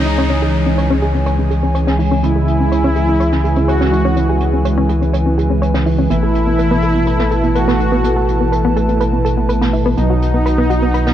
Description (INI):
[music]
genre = melodic techno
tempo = 124 BPM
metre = 4/4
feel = straight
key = C# minor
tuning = A4 = 439 Hz
[part]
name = soft supersaw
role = melody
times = 0.0-11.1 s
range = D#4 to F#4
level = -21 LUFS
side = equal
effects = tape echo
[part]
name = dark analog pad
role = sustained chords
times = 0.0-11.1 s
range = E3 to A5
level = -20 LUFS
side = equal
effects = chorus
[part]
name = analog pluck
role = arpeggios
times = 0.0-11.1 s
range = B3 to C#5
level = -20 LUFS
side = equal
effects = chorus, tape echo
[part]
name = analog synth brass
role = stabs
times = 0.0-11.1 s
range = B2 to E4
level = -20 LUFS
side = right 3 dB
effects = chorus, cassette tape, tape echo
[part]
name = round analog bass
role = bass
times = 0.0-11.1 s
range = A1 to C#2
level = -17 LUFS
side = equal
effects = tube saturation
[part]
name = downlifter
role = sound effects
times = 0.0-2.2 s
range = none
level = -29 LUFS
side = left 1 dB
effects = none
[part]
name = jazz brush drum kit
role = drums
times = 0.1-11.1 s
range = hi-hat, snare drum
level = -32 LUFS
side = right 1 dB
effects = high-pass filter on hats, low-pass filter on hats, high-pass filter on snare, low-pass filter on snare, high-pass filter on room, low-pass filter on room
[sound]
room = light reverb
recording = none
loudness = -12 LUFS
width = side -11 dB against mid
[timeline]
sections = 0.0-11.1 A section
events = filter sweep on synth arpeggio sound 0.0-11.1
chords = 0.0 C#m; 6.1 Asus2; 10.0 B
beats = | 0.30 0.78 1.26 1.75 | 2.23 2.72 3.20 3.68 | 4.17 4.65 5.13 5.62 | 6.10 6.59 7.07 7.55 | 8.04 8.52 9.01 9.49 | 9.97 10.46 10.94